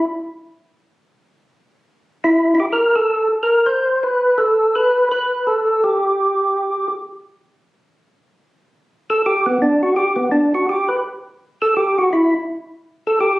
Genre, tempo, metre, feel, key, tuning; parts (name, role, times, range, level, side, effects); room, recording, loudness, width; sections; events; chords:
jazz; 166 BPM; 4/4; swing 64% on 8ths; A4 = 441 Hz
percussive tonewheel organ; solo; 0.0-0.1, 2.2-6.9, 9.1-13.4 s; B3 to C5; -15 LUFS; equal; slow rotary speaker, overdrive
moderate large studio reverb, RT60 0.8 s; recorded on a phone in the room, club reverb; -15 LUFS; side -18 dB against mid
0.0-8.5 A section; 8.5-13.4 B section
tonewheel organ solo 8.5-13.4